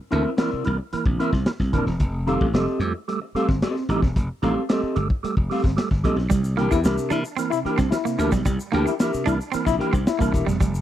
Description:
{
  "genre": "funk",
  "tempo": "112 BPM",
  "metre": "4/4",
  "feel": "straight",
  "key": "unclear",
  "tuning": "A4 = 440 Hz",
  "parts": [
    { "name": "mellow electric guitar", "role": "accompaniment", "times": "0.1-10.5 s", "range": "C4 to G5", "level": "-26 LUFS", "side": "left 2 dB", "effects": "none" },
    { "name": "percussive tonewheel organ", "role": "stabs", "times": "0.1-10.6 s", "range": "C3 to Bb3", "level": "-27 LUFS", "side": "right 5 dB", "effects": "overdrive, chorus vibrato, fast rotary speaker" },
    { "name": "slap bass", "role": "bass", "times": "0.1-10.8 s", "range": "Eb1 to C3", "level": "-24 LUFS", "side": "equal", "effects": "none" },
    { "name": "crunchy breakbeat drum kit", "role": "drums", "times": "0.1-10.7 s", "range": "hi-hat, kick drum, snare drum", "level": "-23 LUFS", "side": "equal", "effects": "none" },
    { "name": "semi-hollow electric guitar", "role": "riff", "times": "6.3-10.7 s", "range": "G3 to D4", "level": "-28 LUFS", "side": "right 8 dB", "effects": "spring reverb" },
    { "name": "egg shaker", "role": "percussion", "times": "6.3-10.8 s", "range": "none", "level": "-42 LUFS", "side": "left 6 dB", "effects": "none" },
    { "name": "breathy trombone", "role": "second line", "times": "6.7-10.5 s", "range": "E4", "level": "-27 LUFS", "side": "left 12 dB", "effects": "none" }
  ],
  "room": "studio reverb",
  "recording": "dry, close 1970s-style studio recording",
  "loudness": "-20 LUFS",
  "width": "side -12 dB against mid",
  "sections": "0.0-10.8 A section",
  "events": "none",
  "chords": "0.0 C9; 2.0 F9; 6.3 C9"
}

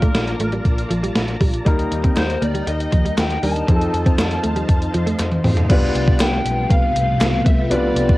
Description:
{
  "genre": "1980s-style pop",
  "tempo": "119 BPM",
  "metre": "4/4",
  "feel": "straight",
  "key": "unclear",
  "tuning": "A4 = 436 Hz",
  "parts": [
    { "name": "lead guitar through a small cranked amp", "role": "melody", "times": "0.0-8.2 s", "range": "Bb4 to A5", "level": "-25 LUFS", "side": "left 1 dB", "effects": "overdrive, cassette tape, tape echo" },
    { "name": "clear baby grand piano", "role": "accompaniment", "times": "0.0-8.2 s", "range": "F3 to B4", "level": "-24 LUFS", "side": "left 1 dB", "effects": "cassette tape" },
    { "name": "string machine, full ensemble", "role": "sustained chords", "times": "0.0-8.2 s", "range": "C3 to Bb5", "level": "-26 LUFS", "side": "equal", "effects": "ensemble chorus, cassette tape" },
    { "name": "direct-recorded clean electric guitar", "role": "riff", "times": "0.0-5.5 s", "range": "F3 to Eb4", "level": "-24 LUFS", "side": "right 1 dB", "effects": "wide subtle chorus, cassette tape, tape echo" },
    { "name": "vintage muted picked electric bass", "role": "bass", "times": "0.0-8.1 s", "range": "A1 to F2", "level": "-24 LUFS", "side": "equal", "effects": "none" },
    { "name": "gated 80s digital drum machine", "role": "drums", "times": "0.0-8.2 s", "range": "crash cymbal, hi-hat, kick drum, snare drum, tambourine, toms", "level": "-18 LUFS", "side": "equal", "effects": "gated reverb, gated reverb snare, cassette tape" },
    { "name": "group handclap", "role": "percussion", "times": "2.2-7.3 s", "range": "none", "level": "-30 LUFS", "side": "left 1 dB", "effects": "none" }
  ],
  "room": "moderate booth ambience, RT60 0.2 s",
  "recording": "home recording on cassette",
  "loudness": "-16 LUFS",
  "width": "side -18 dB against mid",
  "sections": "0.0-5.7 A section; 5.7-8.2 B section",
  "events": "drum fill 5.2-5.7",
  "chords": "0.0 Bbmaj7; 1.7 Ebmaj7; 3.7 F7; 5.7 G7"
}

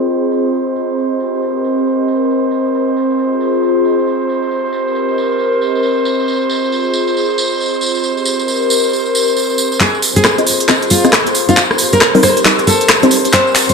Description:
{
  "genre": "UK garage, two-step garage",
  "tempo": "136 BPM",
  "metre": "4/4",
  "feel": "swing 62% on 16ths",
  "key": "F minor",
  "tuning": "A4 = 443 Hz",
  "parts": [
    { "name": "airy breathy pad", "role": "sustained chords", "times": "0.0-13.7 s", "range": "C5", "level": "-20 LUFS", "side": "right 2 dB", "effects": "chorus, sidechain pumping" },
    { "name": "tambourine", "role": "percussion", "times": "0.0-13.7 s", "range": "none", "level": "-20 LUFS", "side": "right 3 dB", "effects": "none" },
    { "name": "warbly tape-like pad", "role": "texture", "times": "0.0-13.7 s", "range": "C4 to Eb5", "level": "-16 LUFS", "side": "left 1 dB", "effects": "chorus, built-in reverb, sidechain pumping" },
    { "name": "nylon-string guitar", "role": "melody", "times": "9.8-13.7 s", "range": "F4 to C5", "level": "-15 LUFS", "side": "equal", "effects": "digital delay" },
    { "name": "electronic kick drum", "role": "drums", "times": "9.8-13.4 s", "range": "none", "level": "-23 LUFS", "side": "equal", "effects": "none" },
    { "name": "garage drum kit", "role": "drums", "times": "9.8-13.7 s", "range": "handclaps, hi-hat, rim click", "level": "-12 LUFS", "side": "equal", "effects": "low-pass filter on snare, low-pass filter on hats, low-pass filter on room" },
    { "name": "punchy chord stab", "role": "stabs", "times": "10.4-13.2 s", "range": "G3 to Eb5", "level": "-15 LUFS", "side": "left 1 dB", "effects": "chorus, digital delay" }
  ],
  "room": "moderate plate reverb, RT60 1.4 s, digital ambience",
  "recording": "low-pass filter",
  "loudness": "-11 LUFS",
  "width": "side -4 dB against mid",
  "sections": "0.0-9.8 A section; 9.8-13.7 B section",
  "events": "filter sweep 0.0-9.8; build-up 9.8-13.7; drum fill 9.8-13.7; filter sweep on synth stab 9.8-13.7; filter sweep on analog synth pad 9.8-13.7",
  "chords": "0.0 Fm7; 11.3 Cm7"
}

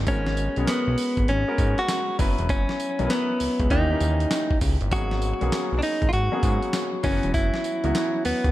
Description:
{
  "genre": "R&B, new jack swing",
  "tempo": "99 BPM",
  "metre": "4/4",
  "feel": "swing 65% on 16ths",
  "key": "G# minor",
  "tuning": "A4 = 440 Hz",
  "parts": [
    { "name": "clear baby grand piano", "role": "accompaniment", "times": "0.0-8.5 s", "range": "E3 to B4", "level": "-30 LUFS", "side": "left 2 dB", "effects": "none" },
    { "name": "fat analog bass", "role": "bass", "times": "0.0-8.5 s", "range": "E1 to G#2", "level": "-25 LUFS", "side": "equal", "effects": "none" },
    { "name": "direct-recorded clean electric guitar", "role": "melody", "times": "0.1-8.5 s", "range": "B3 to F#4", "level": "-25 LUFS", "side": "equal", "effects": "none" },
    { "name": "dusty soul sampler-style drum kit", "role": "drums", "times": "0.1-8.5 s", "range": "handclaps, hi-hat, kick drum, snare drum, tambourine", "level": "-27 LUFS", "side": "equal", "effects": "gated reverb" }
  ],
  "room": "little or no reverb",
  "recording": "none",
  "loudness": "-21 LUFS",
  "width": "side -15 dB against mid",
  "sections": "0.0-8.5 A section",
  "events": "none",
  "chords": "0.1 G#m11; 2.2 F#7sus4; 3.7 D#7b9; 4.9 G#m11; 7.0 F#7sus4"
}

